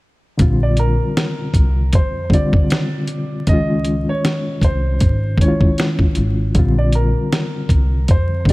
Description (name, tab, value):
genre	lo-fi hip hop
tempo	78 BPM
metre	4/4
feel	swing 57% on 16ths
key	Bb major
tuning	A4 = 441 Hz
part	reed electric piano	accompaniment	0.4-8.5 s	D3 to F4	-20 LUFS	left 1 dB	fast tremolo, cassette tape, low-pass filter
part	upright bass	bass	0.4-8.4 s	Ab1 to F2	-18 LUFS	equal	none
part	dusty soul sampler-style drum kit	drums	0.4-8.5 s	hi-hat, kick drum, snare drum	-16 LUFS	equal	none
part	warm upright piano	melody	0.6-8.5 s	Bb4 to Eb5	-25 LUFS	right 1 dB	low-pass filter, tape echo
room	little or no reverb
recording	echo-heavy mix, vinyl crackle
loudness	-14 LUFS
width	side -21 dB against mid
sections	0.4-8.5 A section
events	none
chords	0.4 Bbadd9; 3.5 Dbmaj9; 6.6 Bbadd9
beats	| 0.40 1.17 1.94 2.70 | 3.47 4.24 5.01 5.78 | 6.55 7.32 8.09